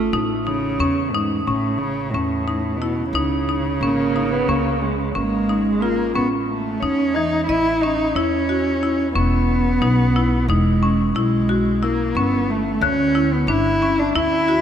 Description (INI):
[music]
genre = contemporary instrumental, chamber music in an uneven meter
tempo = 180 BPM (eighths)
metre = 9/8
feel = straight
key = unclear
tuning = A4 = 440 Hz
[part]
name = dark viola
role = second line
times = 0.0-6.1 s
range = Ab3 to Cb4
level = -26 LUFS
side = right 4 dB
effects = none
[part]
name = marimba with hard mallets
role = arpeggios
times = 0.0-14.6 s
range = D3 to Eb5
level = -23 LUFS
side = left 3 dB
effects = none
[part]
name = upright bass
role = bass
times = 0.0-14.6 s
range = E1 to E2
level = -24 LUFS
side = equal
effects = none
[part]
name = dark cello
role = melody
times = 0.5-14.6 s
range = Ab2 to Fb4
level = -20 LUFS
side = right 1 dB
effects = none
[sound]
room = moderate cathedral reverb, RT60 5.7 s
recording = in a vast, echoing space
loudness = -17 LUFS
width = side -9 dB against mid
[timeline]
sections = 0.0-6.2 A section; 6.2-14.6 B section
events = none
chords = 0.1 A; 3.2 Db5; 6.2 A; 9.2 E; 12.2 G5